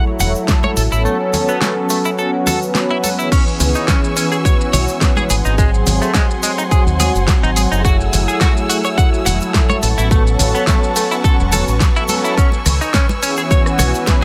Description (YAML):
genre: nu-disco, nu disco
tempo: 106 BPM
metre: 4/4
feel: swing 54% on 16ths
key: C# minor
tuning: A4 = 440 Hz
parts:
  - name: warm analog pad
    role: accompaniment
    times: 0.0-14.2 s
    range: E3 to B4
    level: -22 LUFS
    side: equal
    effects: chorus, tremolo, vintage 12-bit sampler grit, sidechain pumping, digital delay
  - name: direct-recorded clean electric guitar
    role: riff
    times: 0.0-13.9 s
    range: G#3 to F#5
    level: -24 LUFS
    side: equal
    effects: analog chorus, digital delay
  - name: fingered electric bass with an envelope filter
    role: bass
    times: 0.2-13.9 s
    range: E1 to D#2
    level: -19 LUFS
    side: equal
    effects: none
  - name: pop drum kit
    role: drums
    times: 0.2-14.2 s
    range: crash cymbal, hi-hat, rim click, shaker, snare drum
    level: -23 LUFS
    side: equal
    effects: none
  - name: congas and tube shaker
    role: percussion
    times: 0.2-14.2 s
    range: none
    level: -28 LUFS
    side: equal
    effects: none
  - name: electronic kick drum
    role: drums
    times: 0.5-14.2 s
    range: none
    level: -16 LUFS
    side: equal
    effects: none
  - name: rich symphonic string section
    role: sustained chords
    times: 3.3-14.2 s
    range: B4 to E6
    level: -27 LUFS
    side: equal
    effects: sidechain pumping
room: light reverb, digital ambience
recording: none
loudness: -15 LUFS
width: mono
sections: 0.0-14.2 A section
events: none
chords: 0.0 F#m7; 0.8 A69; 3.3 C#m7; 5.3 G#7b9; 7.8 F#m9; 9.8 A69; 12.4 C#m7